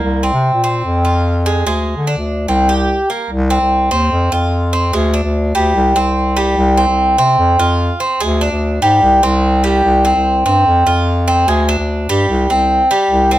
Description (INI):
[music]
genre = latin, Cuban son and guajira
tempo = 147 BPM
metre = 4/4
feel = straight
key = unclear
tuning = A4 = 440 Hz
[part]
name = Cuban tres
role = arpeggios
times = 0.0-13.4 s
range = G3 to G4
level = -14 LUFS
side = right 1 dB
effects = none
[part]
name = warm bass clarinet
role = bass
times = 0.0-13.4 s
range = C2 to D3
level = -15 LUFS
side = equal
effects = none
[sound]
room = light reverb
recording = close, detailed microphones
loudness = -12 LUFS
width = side -14 dB against mid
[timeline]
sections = 0.0-3.3 A section; 3.3-13.4 B section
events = none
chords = 0.0 Bbsus2/C; 0.8 Fm; 1.7 N.C.; 2.5 C5; 3.3 Cm; 4.1 F5; 4.9 Dsus4; 5.8 C5; 7.4 F5; 8.2 Dsus4; 9.0 C5; 10.7 F5; 11.5 Dsus4; 12.3 C5